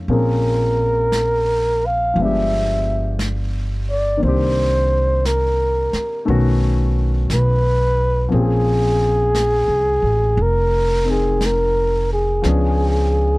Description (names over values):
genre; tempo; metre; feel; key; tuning
jazz ballad; 58 BPM; 4/4; swing 67% on 8ths; Bb minor; A4 = 440 Hz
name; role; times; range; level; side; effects
warm baby grand piano; accompaniment; 0.0-13.4 s; Eb3 to Bb4; -24 LUFS; left 3 dB; none
upright bass; bass; 0.0-13.4 s; F1 to Db2; -19 LUFS; equal; none
breathy flugelhorn; melody; 0.1-13.4 s; Ab4 to F5; -18 LUFS; equal; none
vintage brush drum kit; drums; 0.1-13.4 s; brushed snare drum, hi-hat, snare drum; -32 LUFS; equal; none
room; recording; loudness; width
little or no reverb; dry, close 1970s-style studio recording; -15 LUFS; side -22 dB against mid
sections
0.0-13.4 A section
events
none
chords
0.1 Bbm9; 2.1 G7b9; 4.2 Cm9; 6.3 B9; 8.3 Bbm9; 12.4 Db7b9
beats
| 0.08 1.11 2.15 3.18 | 4.21 5.24 6.27 7.29 | 8.32 9.34 10.37 11.40 | 12.44